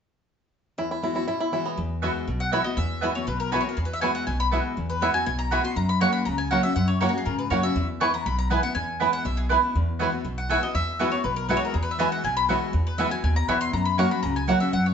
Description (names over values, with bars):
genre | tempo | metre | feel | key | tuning
bluegrass | 241 BPM | 4/4 | straight | E lydian | A4 = 442 Hz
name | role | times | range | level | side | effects
bluegrass banjo | melody | 0.8-14.5 s | A#3 to F#4 | -30 LUFS | right 3 dB | none
picked steel-string acoustic guitar | accompaniment | 0.8-14.9 s | E2 to F#4 | -28 LUFS | left 2 dB | none
upright bass | bass | 1.8-14.9 s | B1 to G#2 | -28 LUFS | equal | none
mandolin | stabs | 2.0-14.6 s | A#3 to G#5 | -27 LUFS | right 4 dB | none
mandolin | melody | 2.4-14.9 s | F#4 to C#6 | -28 LUFS | left 3 dB | none
room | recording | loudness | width
wet studio reverb, RT60 0.9 s | band playing live in one room, nothing above 7.8 kHz | -22 LUFS | side -7 dB against mid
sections
1.8-9.8 A section; 9.8-14.9 A section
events
none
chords
0.8 Eadd9; 5.8 F#; 7.8 E; 9.8 Eadd9; 13.7 F#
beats
| 0.78 1.03 1.28 1.52 | 1.77 2.02 2.27 2.52 | 2.77 3.02 3.27 3.52 | 3.77 4.02 4.27 4.52 | 4.77 5.02 5.27 5.52 | 5.77 6.02 6.27 6.51 | 6.76 7.01 7.26 7.51 | 7.76 8.01 8.26 8.51 | 8.76 9.01 9.26 9.51 | 9.75 10.00 10.25 10.50 | 10.75 11.00 11.25 11.50 | 11.75 11.99 12.24 12.49 | 12.74 12.99 13.24 13.49 | 13.74 13.98 14.23 14.48 | 14.73